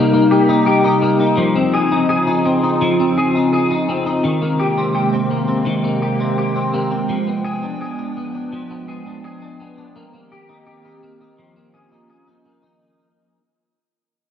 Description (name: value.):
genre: dream pop.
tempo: 84 BPM.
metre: 4/4.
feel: straight.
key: Db lydian.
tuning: A4 = 441 Hz.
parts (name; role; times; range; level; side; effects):
warbly tape-like pad; sustained chords; 0.0-12.8 s; C3 to G5; -18 LUFS; equal; chorus, built-in reverb, phaser.
clean electric guitar; arpeggios; 0.0-13.4 s; Eb3 to Ab4; -18 LUFS; left 2 dB; ensemble chorus, ping-pong delay.
room: wet lush hall reverb, RT60 1.8 s.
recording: worn, warbling old tape, cassette tape, warbly pitch drift.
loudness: -15 LUFS.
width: side -8 dB against mid.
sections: 0.0-12.8 A section.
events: fade-out 0.0-12.8.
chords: 0.0 Cm7; 1.4 Dbmaj9; 4.2 Abmaj9; 7.1 G7b9; 10.0 Cm7; 11.4 Db69.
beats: 0.67 | 1.38 2.09 2.81 3.52 | 4.24 4.95 5.67 6.38 | 7.09 7.81 8.52 9.24 | 9.95 10.67 11.38 12.09.